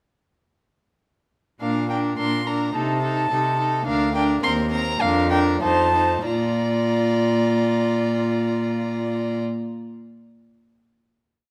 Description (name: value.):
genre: quick classical-period movement for string quartet.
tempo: 92-108 BPM.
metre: 2/4.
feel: rubato.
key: Bb major.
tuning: A4 = 440 Hz.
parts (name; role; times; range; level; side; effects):
warm violin; melody; 1.6-9.4 s; F5 to C6; -28 LUFS; equal; none.
rich violin; second line; 1.6-9.4 s; A4 to D5; -29 LUFS; equal; none.
warm viola; accompaniment; 1.6-9.4 s; C4 to F4; -28 LUFS; equal; none.
rich cello; bass; 1.6-9.4 s; D2 to C3; -27 LUFS; equal; none.
room: wet recital hall reverb, RT60 1.6 s.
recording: none.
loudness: -22 LUFS.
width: mono.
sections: 1.6-6.3 theme; 6.3-8.8 final chord.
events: slowing down 3.3-6.3.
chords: 1.6 Bb; 2.7 Adim/C; 3.9 Bb/D; 4.4 Cm7/Eb; 5.0 Bb/F; 5.6 F7; 6.3 Bb.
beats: | 1.60 2.18 | 2.74 3.30 | 3.86 4.42 | 5.01 5.62 | 6.26 6.89 | 7.53 8.16.